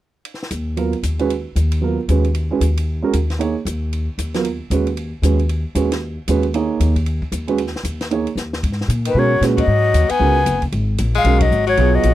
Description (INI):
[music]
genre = modal jazz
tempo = 229 BPM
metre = 4/4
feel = swing 60% on 8ths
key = G# dorian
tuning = A4 = 440 Hz
[part]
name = compact cocktail drum kit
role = drums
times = 0.2-12.1 s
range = hi-hat, kick drum, ride cymbal, snare drum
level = -28 LUFS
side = left 1 dB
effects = none
[part]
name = upright bass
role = bass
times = 0.5-12.1 s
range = F#1 to B2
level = -18 LUFS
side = left 1 dB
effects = none
[part]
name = warm grand piano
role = accompaniment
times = 0.8-12.1 s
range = F#3 to C#5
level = -20 LUFS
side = right 6 dB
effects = none
[part]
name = breathy concert flute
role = melody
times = 9.1-12.1 s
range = B4 to G#5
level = -18 LUFS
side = left 1 dB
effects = none
[part]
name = edgy tenor saxophone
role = second line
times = 9.1-12.1 s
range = D#3 to B3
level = -21 LUFS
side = left 11 dB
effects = none
[sound]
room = little or no reverb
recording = dry, close 1970s-style studio recording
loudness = -16 LUFS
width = side -14 dB against mid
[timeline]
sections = 0.3-8.6 A section; 8.6-12.1 B section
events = drum fill 8.4; band accent 9.6, 11.4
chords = 0.3 G#m11